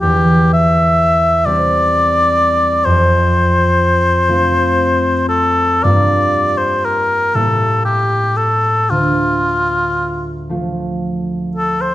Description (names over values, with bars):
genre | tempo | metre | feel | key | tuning
classical, romantic duo for oboe and harp | 37-43 BPM (dotted quarters) | 6/8 | rubato | D minor | A4 = 441 Hz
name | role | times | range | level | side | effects
warm oboe | melody | 0.0-11.9 s | F4 to E5 | -13 LUFS | left 1 dB | none
concert harp | accompaniment | 0.0-11.9 s | D2 to G4 | -16 LUFS | equal | none
room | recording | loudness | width
moderate recital hall reverb, RT60 1.6 s | close, detailed microphones | -12 LUFS | side -14 dB against mid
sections
0.0-11.9 A section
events
none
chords
0.0 C/E; 2.9 F; 5.8 Gm7; 7.3 A5; 8.9 Dm